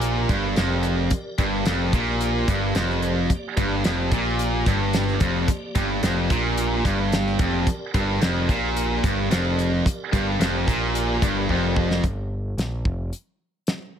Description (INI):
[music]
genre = classic rock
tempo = 110 BPM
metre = 4/4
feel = straight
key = G minor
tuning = A4 = 440 Hz
[part]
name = tonewheel organ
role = sustained chords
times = 0.0-12.0 s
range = Bb3 to D5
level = -35 LUFS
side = equal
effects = slow rotary speaker, overdrive, chorus vibrato
[part]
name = cranked stack guitar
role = riff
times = 0.0-12.0 s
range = F2 to Bb2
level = -26 LUFS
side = left 11 dB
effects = overdrive
[part]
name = tight distorted guitar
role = riff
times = 0.0-12.0 s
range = F2 to Bb2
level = -25 LUFS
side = right 11 dB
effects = distortion
[part]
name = growling picked electric bass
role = bass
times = 0.0-13.1 s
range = F1 to Bb1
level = -26 LUFS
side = equal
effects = overdrive
[part]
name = damped 70s drum kit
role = drums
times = 0.0-13.8 s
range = hi-hat, kick drum, snare drum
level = -24 LUFS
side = equal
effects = none
[sound]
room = light reverb, small room ambience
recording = none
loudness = -20 LUFS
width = side -9 dB against mid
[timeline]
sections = 0.0-12.0 A section; 12.0-14.0 B section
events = drum fill 11.5-12.0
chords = 0.0 Gm